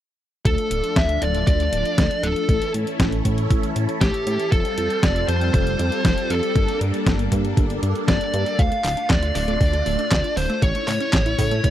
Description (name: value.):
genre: italo disco.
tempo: 118 BPM.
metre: 4/4.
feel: straight.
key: D minor.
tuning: A4 = 439 Hz.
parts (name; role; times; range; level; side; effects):
fuzz lead guitar; melody; 0.5-11.7 s; G4 to F5; -24 LUFS; equal; distortion, tape echo.
phased string machine; sustained chords; 0.5-11.7 s; G3 to A4; -28 LUFS; right 1 dB; ensemble chorus, phaser.
mellow synth brass; stabs; 0.5-8.6 s; E3 to A4; -28 LUFS; left 3 dB; chorus.
chorused synth bass; bass; 0.5-11.7 s; D1 to A2; -24 LUFS; equal; none.
detuned 8-bit digital drum machine; drums; 0.5-11.7 s; handclaps, hi-hat, snare drum; -24 LUFS; equal; overdrive.
electronic kick drum; drums; 0.5-11.7 s; none; -21 LUFS; equal; overdrive.
wide unison pluck; arpeggios; 8.6-11.7 s; C#3 to F4; -30 LUFS; right 3 dB; tape echo.
room: light reverb.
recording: dry, close 1970s-style studio recording.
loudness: -18 LUFS.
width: side -12 dB against mid.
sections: 0.5-11.7 A section.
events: none.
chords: 0.5 Dm; 2.5 A; 4.5 Fadd9; 6.6 Gmadd9; 8.6 Dm; 10.6 A.